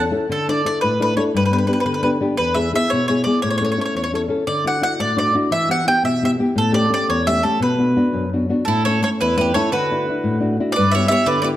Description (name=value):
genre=italian folk, Italian serenade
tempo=115 BPM (dotted quarters)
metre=6/8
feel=rubato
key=D major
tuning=A4 = 440 Hz
part: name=bowl-back mandolin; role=second line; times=0.0, 8.7-11.5 s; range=E4 to C#5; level=-25 LUFS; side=right 6 dB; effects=none
part: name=nylon-string guitar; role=accompaniment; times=0.0-11.6 s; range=E2 to A4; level=-19 LUFS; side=left 2 dB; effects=none
part: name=mandolin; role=melody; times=0.3-11.5 s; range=A4 to G5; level=-20 LUFS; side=right 1 dB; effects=none
room=wet recital hall reverb, RT60 1.5 s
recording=none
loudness=-16 LUFS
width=side -13 dB against mid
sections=0.3-11.6 A section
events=none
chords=0.3 Dsus2; 1.3 G; 2.4 E; 3.4 A; 4.5 Dadd9; 5.5 Em; 6.6 A7; 7.6 Bm; 8.7 A; 9.7 Dadd9; 10.8 G6